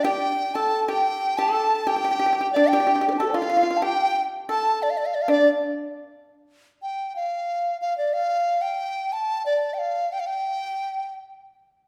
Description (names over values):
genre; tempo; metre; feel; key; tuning
chinese traditional, Chinese chamber ensemble; 90 BPM; 2/4; rubato; unclear; A4 = 439 Hz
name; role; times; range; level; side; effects
hollow large dizi; melody; 0.0-11.1 s; D4 to A5; -25 LUFS; equal; none
pipa; second line; 0.0-5.5 s; D4 to A4; -28 LUFS; equal; none
bright xiao; second line; 0.8-5.5 s; D5 to A5; -29 LUFS; equal; none
room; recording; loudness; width
wet recital hall reverb, RT60 1.6 s; heard from further back in the room; -23 LUFS; mono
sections
0.0-6.2 A section; 6.2-11.9 B section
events
none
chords
none